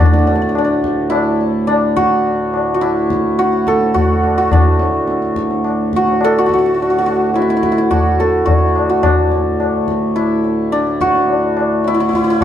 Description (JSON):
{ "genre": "indian classical, Hindustani", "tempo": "106 BPM", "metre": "4/4", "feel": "straight", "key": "D raga hamsadhwani", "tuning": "A4 = 440 Hz", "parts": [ { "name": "santur", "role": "melody", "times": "0.0-12.4 s", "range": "D4 to A4", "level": "-15 LUFS", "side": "equal", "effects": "plate reverb" }, { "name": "pedal harmonium", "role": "drone", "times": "0.0-12.4 s", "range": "D2 to A2", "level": "-20 LUFS", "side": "right 2 dB", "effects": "none" }, { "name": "tabla", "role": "percussion", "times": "0.0-12.4 s", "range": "none", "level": "-18 LUFS", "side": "left 2 dB", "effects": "none" } ], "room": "moderate studio reverb, RT60 0.6 s", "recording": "dark, warm production", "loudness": "-12 LUFS", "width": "side -10 dB against mid", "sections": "0.0-12.4 A section", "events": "none", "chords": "none" }